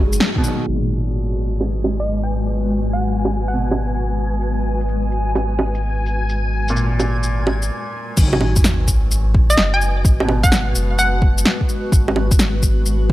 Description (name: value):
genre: future garage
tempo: 128 BPM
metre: 4/4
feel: swing 66% on 16ths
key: G# minor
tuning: A4 = 440 Hz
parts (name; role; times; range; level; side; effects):
- clear upright piano; accompaniment; 0.0-13.1 s; A#2 to B3; -27 LUFS; right 1 dB; vintage 12-bit sampler grit, sidechain pumping, analog delay
- granular cloud pad; sustained chords; 0.0-13.1 s; G#3 to B4; -26 LUFS; left 1 dB; built-in reverb, vintage 12-bit sampler grit, sidechain pumping
- soft dub sub bass; bass; 0.0-13.1 s; F#1 to A#1; -20 LUFS; equal; sidechain pumping
- deep house drum kit; drums; 0.1-13.0 s; bongos, crash cymbal, shaker, snare drum; -20 LUFS; right 1 dB; overdrive, studio reverb
- electronic kick drum; drums; 0.4, 8.2-13.1 s; none; -16 LUFS; equal; overdrive, studio reverb
- backwards swelling texture; texture; 2.7-7.7 s; G#5; -30 LUFS; left 2 dB; built-in reverb
- hollow square pluck; melody; 2.0-4.2, 9.5-11.7 s; D#5 to G#5; -22 LUFS; right 1 dB; chorus, tape echo
- sub drop; sound effects; 8.2-10.0 s; none; -25 LUFS; equal; none
room: light reverb, digital ambience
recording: low-pass filter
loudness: -16 LUFS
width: side -16 dB against mid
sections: 0.7-8.2 A section; 8.2-13.1 B section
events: band accent 0.2; filter sweep 0.7-8.2; stop 7.7-8.2; impact 8.2-10.0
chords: 0.0 G#m7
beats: 0.20 | 0.67 1.14 1.61 2.08 | 2.54 3.01 3.48 3.95 | 4.42 4.89 5.36 5.83 | 6.29 6.76 7.23 7.70 | 8.17 8.64 9.11 9.58 | 10.04 10.51 10.98 11.45 | 11.92 12.39 12.86